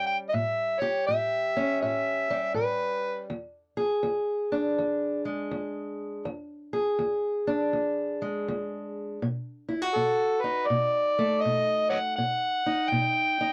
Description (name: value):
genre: acoustic country blues, solo or duo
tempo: 81 BPM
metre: 4/4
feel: swing 64% on 8ths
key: E mixolydian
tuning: A4 = 440 Hz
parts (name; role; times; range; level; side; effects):
- overdriven harmonica; melody; 0.0-3.3, 9.9-13.5 s; A4 to G5; -28 LUFS; equal; none
- fingerpicked steel-string acoustic guitar; accompaniment; 0.0-13.5 s; E2 to G#4; -31 LUFS; equal; none
room: moderate booth ambience, RT60 0.2 s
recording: dark, warm production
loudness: -28 LUFS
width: mono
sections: 0.0-13.5 A section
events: none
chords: 0.0 A7; 3.3 E7; 9.2 B7